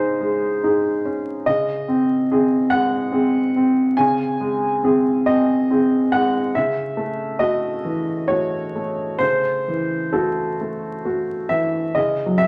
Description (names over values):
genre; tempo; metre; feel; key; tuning
neoclassical minimalist piano; 64-72 BPM; 3/4; rubato; unclear; A4 = 436 Hz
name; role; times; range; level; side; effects
warm upright piano; solo; 0.0-12.5 s; C#3 to G#5; -20 LUFS; equal; none
room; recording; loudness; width
wet large studio reverb, RT60 1.2 s; vinyl crackle; -20 LUFS; mono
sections
0.0-12.0 A section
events
none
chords
0.0 C#sus2; 1.5 G#/C#; 6.5 A6/C#; 12.0 F#5/C#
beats
0.62 | 1.47 2.31 3.14 | 3.99 4.84 5.69 | 6.54 7.39 8.28 | 9.20 10.12 11.05 | 11.96